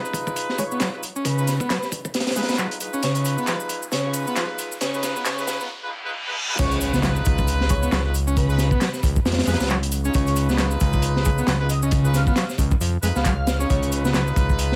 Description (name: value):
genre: breakbeat, breaks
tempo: 135 BPM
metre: 4/4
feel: swing 57% on 16ths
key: unclear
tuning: A4 = 440 Hz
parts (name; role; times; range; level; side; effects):
- bright brass ensemble; stabs; 0.0-14.8 s; D#4 to C#5; -32 LUFS; equal; low-pass filter, tape echo
- riser, reverse cymbal and impact; sound effects; 2.0-8.4 s; none; -36 LUFS; equal; none
- crunchy breakbeat drum kit; drums; 0.1-14.8 s; crash cymbal, hi-hat, kick drum, snare drum; -26 LUFS; equal; high-pass filter on kick, high-pass filter on hats, high-pass filter on cymbals, high-pass filter on snare, high-pass filter on room
- electronic shaker and handclaps; drums; 0.1-14.7 s; none; -33 LUFS; equal; none
- airy dreamy lead; melody; 0.6-13.9 s; B4 to E#5; -34 LUFS; equal; chorus, old record sound, tape echo
- combo organ; riff; 0.6-14.2 s; C#3 to C#4; -28 LUFS; equal; tube saturation, low-pass filter
- fat analog bass; bass; 6.6-14.8 s; C#2 to E#2; -25 LUFS; equal; tube saturation
room: moderate small room reverb, RT60 0.5 s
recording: vinyl crackle, high-pass filter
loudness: -22 LUFS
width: mono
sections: 0.0-6.6 A section; 6.6-14.8 B section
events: build-up 0.0-6.6; filter sweep on transistor combo organ 0.0-6.6; filter sweep on brass ensemble 0.0-6.6; filter sweep 0.0-6.6; drum fill 3.0-5.7; break 5.7-6.6; reverse cymbal 5.7-6.6; drop 6.6-14.8; impact 6.6-8.4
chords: 0.0 C#7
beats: 0.36 0.81 | 1.25 1.70 2.14 2.59 | 3.03 3.48 3.92 4.37 | 4.81 5.25 5.70 6.14 | 6.59 7.03 7.48 7.92 | 8.37 8.81 9.25 9.70 | 10.14 10.59 11.03 11.48 | 11.92 12.37 12.81 13.25 | 13.70 14.14 14.59